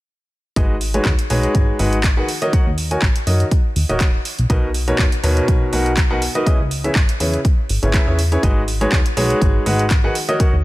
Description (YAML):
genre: piano house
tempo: 122 BPM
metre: 4/4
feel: swing 54% on 16ths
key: G# minor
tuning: A4 = 441 Hz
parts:
  - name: warm baby grand piano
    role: riff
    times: 0.6-10.5 s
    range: B2 to G#5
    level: -20 LUFS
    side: equal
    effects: sidechain pumping, ping-pong delay
  - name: plucky analog bass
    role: bass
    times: 0.6-10.6 s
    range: D#1 to F#2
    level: -20 LUFS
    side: equal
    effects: sidechain pumping
  - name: electronic kick drum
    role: drums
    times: 0.6-10.5 s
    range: none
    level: -16 LUFS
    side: equal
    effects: none
  - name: punchy analog drum machine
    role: drums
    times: 0.6-10.5 s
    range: handclaps, hi-hat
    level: -25 LUFS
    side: right 1 dB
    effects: none
room: digital ambience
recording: none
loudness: -15 LUFS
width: side -18 dB against mid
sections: 0.6-10.6 A section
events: none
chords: 0.6 G#m7; 2.3 D#m7; 4.3 Bmaj7; 6.5 C#m7; 8.4 G#m7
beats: | 0.56 1.06 1.55 2.04 | 2.53 3.02 3.52 4.01 | 4.50 4.99 5.48 5.97 | 6.46 6.96 7.45 7.94 | 8.43 8.92 9.42 9.91 | 10.40